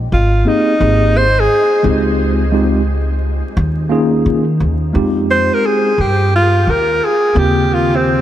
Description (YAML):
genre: hip hop, jazz-hop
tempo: 87 BPM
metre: 4/4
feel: swing 66% on 16ths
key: F minor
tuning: A4 = 440 Hz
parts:
  - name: upright bass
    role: bass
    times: 0.0-8.2 s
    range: Ab1 to Eb3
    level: -16 LUFS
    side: equal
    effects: none
  - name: breathy alto saxophone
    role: melody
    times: 0.1-8.2 s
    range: C4 to C5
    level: -15 LUFS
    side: equal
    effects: diffuse ambient delay
  - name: mellow tine electric piano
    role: accompaniment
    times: 0.4-8.2 s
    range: Db3 to Ab4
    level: -17 LUFS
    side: equal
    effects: medium stereo tremolo
room: moderate huge ambient reverb, RT60 7.7 s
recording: dreamy mix soaked in reverb, vinyl crackle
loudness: -11 LUFS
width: side -12 dB against mid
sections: 0.0-4.9 A section; 4.9-8.2 B section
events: alto saxophone solo 4.9-8.2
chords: 0.0 Abmaj9; 1.8 Dbmaj9#11; 3.6 Eb7sus4; 4.9 Fm9; 7.4 Eb13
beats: 0.11 0.80 1.49 | 2.18 2.87 3.56 4.25 | 4.94 5.63 6.32 7.01 | 7.70